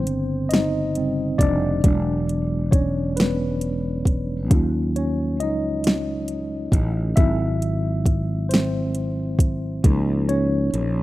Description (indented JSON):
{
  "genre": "slow six-eight R&B",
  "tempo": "45 BPM (dotted quarters)",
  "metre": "6/8",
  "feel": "straight",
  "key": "unclear",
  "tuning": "A4 = 440 Hz",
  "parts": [
    { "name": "mellow tine electric piano", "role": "accompaniment", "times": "0.0-11.0 s", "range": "Db3 to E5", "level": "-24 LUFS", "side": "equal", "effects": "medium stereo tremolo" },
    { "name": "fretless electric bass", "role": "bass", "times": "0.0-11.0 s", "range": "E1 to Eb2", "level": "-24 LUFS", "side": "equal", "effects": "none" },
    { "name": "smooth R&B drum kit", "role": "drums", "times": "0.1-10.9 s", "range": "hi-hat, kick drum, snare drum", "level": "-19 LUFS", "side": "equal", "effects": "overdrive" }
  ],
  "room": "little or no reverb",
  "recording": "rough home demo mix",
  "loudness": "-19 LUFS",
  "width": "side -17 dB against mid",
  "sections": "0.0-11.0 A section",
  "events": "tine electric piano solo 0.0-11.0",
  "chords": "0.0 Bbm69 (rootless); 1.8 E9; 4.5 Ebm9; 7.2 Abaug7; 9.8 Db69"
}